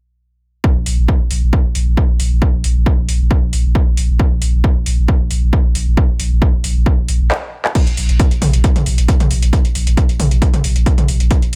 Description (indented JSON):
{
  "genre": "driving peak-time techno",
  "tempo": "135 BPM",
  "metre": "4/4",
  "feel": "straight",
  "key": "unclear",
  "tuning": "A4 = 442 Hz",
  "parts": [
    { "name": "electronic kick drum", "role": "drums", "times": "0.6-11.4 s", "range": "none", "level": "-17 LUFS", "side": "equal", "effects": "none" },
    { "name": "warm sub bass", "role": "bass", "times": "0.8-11.6 s", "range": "Bb1", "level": "-18 LUFS", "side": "equal", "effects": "overdrive, sidechain pumping, low-pass filter" },
    { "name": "techno drum kit", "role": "drums", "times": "0.9-11.6 s", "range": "crash cymbal, handclaps, hi-hat, toms", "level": "-23 LUFS", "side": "equal", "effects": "sidechain pumping on hats, sidechain pumping on cymbals, sidechain pumping on toms" }
  ],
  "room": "little or no reverb",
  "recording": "none",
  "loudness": "-15 LUFS",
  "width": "mono",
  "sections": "0.6-7.8 A section; 7.8-11.6 B section",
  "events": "drum fill 7.3-7.8; stop 7.3-7.8",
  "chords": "none"
}